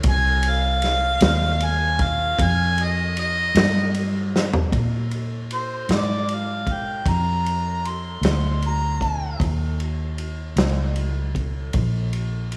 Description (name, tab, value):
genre	slow blues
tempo	51 BPM (dotted quarters)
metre	12/8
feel	straight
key	Bb mixolydian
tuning	A4 = 440 Hz
part	vintage muted fingered electric bass	bass	0.0-12.6 s	Bb1 to Bb2	-26 LUFS	equal	none
part	vintage drum kit	drums	0.0-12.6 s	kick drum, ride cymbal, snare drum, toms	-28 LUFS	equal	none
part	warm harmonica	melody	0.1-9.4 s	C5 to C6	-26 LUFS	equal	overdrive, slapback echo
room	moderate scoring stage reverb, RT60 1.9 s, small room ambience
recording	big arena sound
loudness	-22 LUFS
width	mono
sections	0.0-4.7 A section; 4.7-12.6 A section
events	harmonica solo 0.0-12.6; drum fill 4.3-4.7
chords	0.0 Fsus2; 4.7 Bb9; 9.4 Eb7(no3)